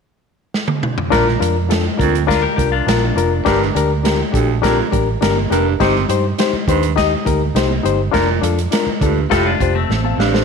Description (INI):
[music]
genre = uptempo 1960s-style soul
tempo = 102 BPM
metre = 4/4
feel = straight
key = Bb major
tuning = A4 = 440 Hz
[part]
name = swinging big-band drum kit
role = drums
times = 0.5-10.4 s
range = hi-hat, kick drum, snare drum, toms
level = -20 LUFS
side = right 2 dB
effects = none
[part]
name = barky reed electric piano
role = accompaniment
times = 1.1-10.4 s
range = D4 to A5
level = -18 LUFS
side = left 9 dB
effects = overdrive
[part]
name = growling baritone saxophone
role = riff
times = 1.1-10.4 s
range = D2 to C3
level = -22 LUFS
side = right 14 dB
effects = none
[part]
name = vintage muted fingered electric bass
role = bass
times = 1.1-10.4 s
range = F1 to G2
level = -19 LUFS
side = right 2 dB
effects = none
[part]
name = congas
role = percussion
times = 1.1-10.2 s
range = none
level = -30 LUFS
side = right 14 dB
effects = none
[part]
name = clean electric guitar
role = riff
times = 2.3-3.4, 9.3-10.4 s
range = A3 to Bb4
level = -22 LUFS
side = left 11 dB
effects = lush chorus
[sound]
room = moderate echo chamber reverb, RT60 1.8 s, small room ambience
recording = 1960s-style stereo with parts hard left and right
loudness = -14 LUFS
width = side -5 dB against mid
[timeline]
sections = 0.0-1.1 A section; 1.1-10.4 B section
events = drum fill 0.5-1.1, 9.9-10.4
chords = 0.0 N.C.; 1.1 Bb; 3.5 Gm; 5.8 Cm/G; 8.1 Bb/F; 9.3 Fadd9